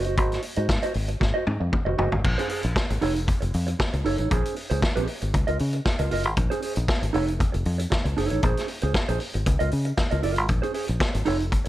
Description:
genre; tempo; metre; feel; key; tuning
disco; 116 BPM; 4/4; straight; Bb minor; A4 = 440 Hz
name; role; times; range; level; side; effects
mellow electric guitar; accompaniment; 0.0-11.7 s; Db4 to Eb5; -28 LUFS; right 3 dB; none
fingered electric bass; bass; 0.0-11.6 s; F1 to Db3; -25 LUFS; equal; none
vintage drum kit; drums; 0.0-11.7 s; crash cymbal, hi-hat, kick drum, snare drum, toms; -26 LUFS; equal; none
room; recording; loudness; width
little or no reverb; none; -22 LUFS; side -15 dB against mid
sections
0.0-2.2 A section; 2.2-11.7 B section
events
drum fill 1.2-2.2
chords
0.0 Ab7; 2.2 Bbm9; 3.0 F7b13; 4.3 Bbm9; 5.3 Db69; 6.4 Bbm9; 7.1 F7b13; 8.4 Bbm9; 9.5 Db69; 10.5 Bbm9

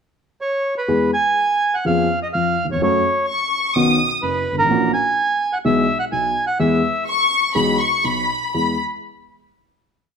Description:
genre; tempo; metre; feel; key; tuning
tango; 126 BPM; 4/4; rubato; E major; A4 = 437 Hz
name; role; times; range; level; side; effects
bandoneon; melody; 0.4-7.0 s; A#4 to G#5; -19 LUFS; right 2 dB; none
dark baby grand piano; accompaniment; 0.9-8.7 s; F#1 to A4; -20 LUFS; left 1 dB; none
warm studio violin section; second line; 3.3-4.1, 7.1-8.8 s; B5 to D#6; -18 LUFS; left 3 dB; none
room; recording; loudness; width
moderate large studio reverb, RT60 1.2 s; band playing live in one room; -16 LUFS; side -6 dB against mid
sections
0.0-0.9 pickup bar; 0.9-8.5 A section; 8.5-10.2 final chord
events
none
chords
0.0 N.C.; 0.9 E; 1.9 C#7/E#; 2.8 F#m; 3.8 Badd9; 4.7 F#7/A#; 5.7 E/B; 6.1 N.C.; 6.6 E; 8.0 N.C.; 8.5 E

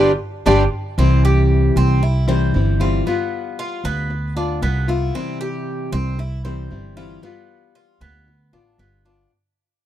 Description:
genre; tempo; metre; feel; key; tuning
latin; 115 BPM; 4/4; straight; C major; A4 = 439 Hz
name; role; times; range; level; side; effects
nylon-string guitar; melody; 0.0-0.6 s; G4 to D5; -17 LUFS; right 1 dB; none
nylon-string guitar; accompaniment; 0.0-9.3 s; C3 to F4; -23 LUFS; left 5 dB; none
Cuban tres; arpeggios; 0.0-9.3 s; B3 to C5; -25 LUFS; right 3 dB; none
upright bass; bass; 0.0-9.2 s; G1 to D2; -18 LUFS; right 1 dB; none
room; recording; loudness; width
small room ambience; dry, close 1970s-style studio recording; -16 LUFS; side -12 dB against mid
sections
1.0-9.3 A section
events
band accent 0.0-1.0; fade-out 1.0-9.3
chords
0.0 G7; 1.0 C; 3.1 G7; 5.1 C; 7.2 G7

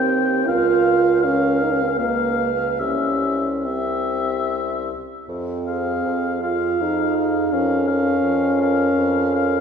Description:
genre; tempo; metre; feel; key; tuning
classical, slow romantic movement for wind quintet; 70-85 BPM; 3/4; rubato; F minor; A4 = 440 Hz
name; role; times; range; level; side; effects
warm oboe; second line; 0.0-9.6 s; E5 to G5; -24 LUFS; left 4 dB; none
warm French horn; accompaniment; 0.0-9.6 s; Bb3 to F4; -20 LUFS; right 1 dB; none
warm clarinet; accompaniment; 0.0-9.6 s; G4 to Cb5; -26 LUFS; right 3 dB; none
mellow bassoon; bass; 0.0-9.6 s; C2 to F2; -27 LUFS; right 2 dB; none
room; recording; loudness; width
wet church reverb, RT60 3.0 s; recorded in a church or concert hall; -18 LUFS; side -7 dB against mid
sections
0.0-9.6 A section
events
none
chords
0.5 Bbm/Db; 2.0 Db7; 2.8 C; 5.3 Fm; 7.5 Bbm/F

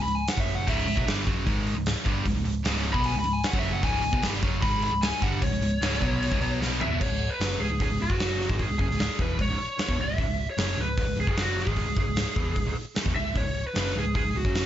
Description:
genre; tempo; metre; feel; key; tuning
hard rock; 151 BPM; 4/4; straight; C# minor; A4 = 439 Hz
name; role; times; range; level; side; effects
lead guitar through a small cranked amp; melody; 0.0-14.7 s; F#4 to B5; -30 LUFS; left 1 dB; overdrive, slapback echo
distorted electric guitar; riff; 0.0-14.7 s; C#2 to B3; -32 LUFS; right 1 dB; distortion
hollow-body short-scale picked electric bass; bass; 0.0-14.7 s; C#1 to B1; -30 LUFS; equal; none
gated 80s drum kit; drums; 0.1-14.6 s; crash cymbal, hi-hat, kick drum, snare drum, toms; -28 LUFS; equal; none
distorted electric guitar; riff; 0.7-7.0 s; C#2 to B3; -32 LUFS; equal; distortion
room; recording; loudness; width
small room ambience; nothing above 7.7 kHz; -24 LUFS; side -11 dB against mid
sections
0.0-7.0 A section; 7.0-14.7 B section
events
lead electric guitar solo 0.0-7.0; drum fill 6.6-7.0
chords
0.0 C#5; 8.1 F#5; 8.5 C#m; 11.3 F#5; 11.7 C#m

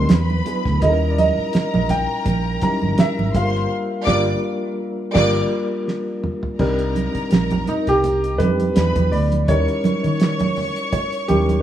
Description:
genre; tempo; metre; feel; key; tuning
lush 1970s-style soul; 83 BPM; 4/4; swing 54% on 16ths; unclear; A4 = 443 Hz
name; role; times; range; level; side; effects
warm concert grand piano; melody; 0.0-11.6 s; Eb4 to Bb5; -22 LUFS; right 2 dB; tape echo
warm studio string section; second line; 0.0-11.6 s; Bb4 to D6; -26 LUFS; equal; none
reed electric piano; accompaniment; 0.0-11.6 s; F#3 to Bb4; -24 LUFS; left 2 dB; overdrive, fast tremolo
vintage muted fingered electric bass; bass; 0.0-11.6 s; G1 to Eb3; -20 LUFS; right 1 dB; none
cloth-damped thuddy drum kit; drums; 0.1-11.6 s; crash cymbal, hi-hat, kick drum, snare drum, toms; -22 LUFS; right 1 dB; none
congas; percussion; 0.1-11.6 s; none; -25 LUFS; right 6 dB; none
room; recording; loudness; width
light reverb, small room ambience; rough home demo mix; -17 LUFS; side -11 dB against mid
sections
0.0-6.6 A section; 6.6-11.6 B section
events
band accent 3.7-6.6; drum fill 5.9-6.6; grand piano solo 6.6-11.6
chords
0.1 E9; 0.8 Eb7b9; 3.4 Gm7; 6.6 Cm9; 8.8 E9; 9.5 Eb7b9

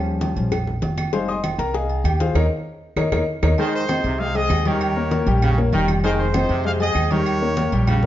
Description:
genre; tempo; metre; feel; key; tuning
latin, salsa; 196 BPM; 4/4; straight; unclear; A4 = 441 Hz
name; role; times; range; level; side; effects
clear grand piano; accompaniment; 0.0-8.1 s; F3 to Eb6; -23 LUFS; left 4 dB; none
upright bass; bass; 0.0-8.1 s; F1 to F2; -22 LUFS; right 1 dB; none
congas; percussion; 0.1-8.1 s; none; -27 LUFS; equal; none
agogo bells and timbales; percussion; 0.2-8.0 s; none; -30 LUFS; right 8 dB; none
cowbell; percussion; 0.2-3.5 s; none; -31 LUFS; left 6 dB; none
claves; percussion; 0.5-8.0 s; none; -36 LUFS; right 6 dB; none
clear trumpet section; melody; 3.6-8.0 s; Eb4 to F5; -25 LUFS; equal; none
brilliant trombone section; second line; 3.6-8.0 s; C3 to Eb3; -27 LUFS; right 3 dB; none
room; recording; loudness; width
moderate large studio reverb, RT60 1.1 s; dark, warm production, nothing above 7.5 kHz; -18 LUFS; side -12 dB against mid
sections
0.0-3.6 A section; 3.6-8.1 B section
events
grand piano solo 0.0-3.6; drum fill 2.4-3.6; band accent 2.4-3.6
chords
0.0 Eb7; 1.1 Fm7; 2.4 Eb5; 3.6 Abmaj7; 4.8 Eb7; 6.0 Fm7; 7.3 Eb7

